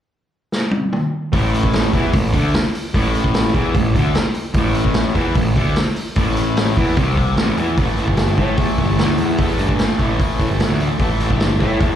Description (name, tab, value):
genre	blues rock power trio and southern rock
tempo	149 BPM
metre	4/4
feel	straight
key	A minor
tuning	A4 = 439 Hz
part	vintage drum kit	drums	0.5-11.9 s	hi-hat, kick drum, snare drum, toms	-19 LUFS	equal	none
part	sludgy distorted guitar	riff	1.3-12.0 s	A2 to A3	-20 LUFS	equal	overdrive
part	fuzz picked electric bass	bass	1.3-11.9 s	G1 to A2	-19 LUFS	equal	overdrive
room	light reverb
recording	live gig heard through the venue's PA, club reverb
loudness	-15 LUFS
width	side -10 dB against mid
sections	0.0-1.3 A section; 1.3-7.8 B section; 7.8-12.0 C section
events	drum fill 0.5-1.3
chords	0.0 N.C.; 1.3 Am; 7.8 A5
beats	0.12 0.52 0.93 | 1.33 1.74 2.14 2.54 | 2.95 3.35 3.75 4.16 | 4.56 4.96 5.37 5.77 | 6.17 6.57 6.98 7.38 | 7.78 8.19 8.59 8.99 | 9.40 9.80 10.21 10.61 | 11.02 11.42 11.82